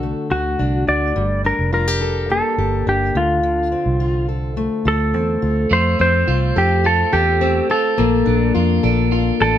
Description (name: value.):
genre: acoustic pop.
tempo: 106 BPM.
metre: 4/4.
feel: straight.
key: F major.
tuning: A4 = 440 Hz.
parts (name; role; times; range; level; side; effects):
fingerpicked plugged-in steel-string acoustic guitar; accompaniment; 0.0-9.6 s; D3 to A4; -21 LUFS; left 4 dB; none.
vintage muted fingered electric bass; bass; 0.0-9.6 s; F1 to F2; -20 LUFS; right 1 dB; none.
clean lap steel guitar; melody; 0.3-9.6 s; F4 to D5; -18 LUFS; equal; none.
electric guitar at the edge of break-up; arpeggios; 5.7-9.6 s; F3 to F4; -24 LUFS; right 6 dB; none.
room: moderate studio reverb, RT60 0.8 s.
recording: none.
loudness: -15 LUFS.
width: side -10 dB against mid.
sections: 0.0-5.7 A section; 5.7-9.6 B section.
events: none.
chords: 0.0 D; 1.2 Gmadd9; 3.2 Dm7; 5.7 F; 8.0 Bbmaj7.